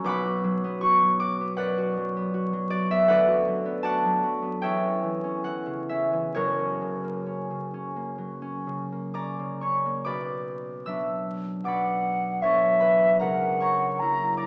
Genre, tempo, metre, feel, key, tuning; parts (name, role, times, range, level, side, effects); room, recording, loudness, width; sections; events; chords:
classical, romantic duo for flute and harp; 60-80 BPM; 4/4; rubato; B minor; A4 = 440 Hz
concert harp; accompaniment; 0.0-14.5 s; F#1 to E6; -24 LUFS; equal
mellow hollow silver concert flute; melody; 11.6-14.5 s; E5 to A#5; -22 LUFS; equal
wet recital hall reverb, RT60 1.5 s; vinyl crackle, small speaker sound; -23 LUFS; side -34 dB against mid
0.0-10.0 A section; 10.0-14.5 B section
0.1 Bm; 3.1 Bm/D; 4.6 C#dim/E; 6.3 F#; 10.0 Bm; 13.2 F#7/C#